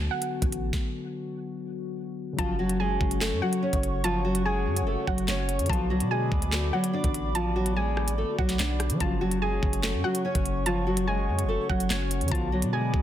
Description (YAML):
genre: hip hop, drill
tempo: 145 BPM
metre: 4/4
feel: half-time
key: F# harmonic minor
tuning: A4 = 441 Hz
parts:
  - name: soft round pluck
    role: second line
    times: 0.0-13.0 s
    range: F#5 to A5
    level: -34 LUFS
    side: right 2 dB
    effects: chorus, ping-pong delay
  - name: muted felt-like synth keys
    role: accompaniment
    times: 0.0-13.0 s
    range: C#3 to F#4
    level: -35 LUFS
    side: left 4 dB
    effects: chorus
  - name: long sustained 808-style bass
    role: bass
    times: 0.0-13.0 s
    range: F#1 to F#3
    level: -29 LUFS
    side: equal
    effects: none
  - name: drill drum kit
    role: drums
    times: 0.2-13.0 s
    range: handclaps, hi-hat, kick drum, rim click, snare drum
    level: -29 LUFS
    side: equal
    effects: none
  - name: nylon-string guitar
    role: melody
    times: 2.4-13.0 s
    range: E#3 to D5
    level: -29 LUFS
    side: equal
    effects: ping-pong delay
  - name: dark analog pad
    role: sustained chords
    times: 2.7-13.0 s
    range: F#4 to D6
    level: -36 LUFS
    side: left 1 dB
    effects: chorus
room: light reverb, digital ambience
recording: dense, heavily limited modern master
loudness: -24 LUFS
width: side -11 dB against mid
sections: 0.0-2.4 A section; 2.4-13.0 B section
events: break 0.0-2.4; stop 0.7-2.4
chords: 0.0 Bm; 2.4 F#m; 5.7 Bm; 9.0 F#m; 12.3 Bm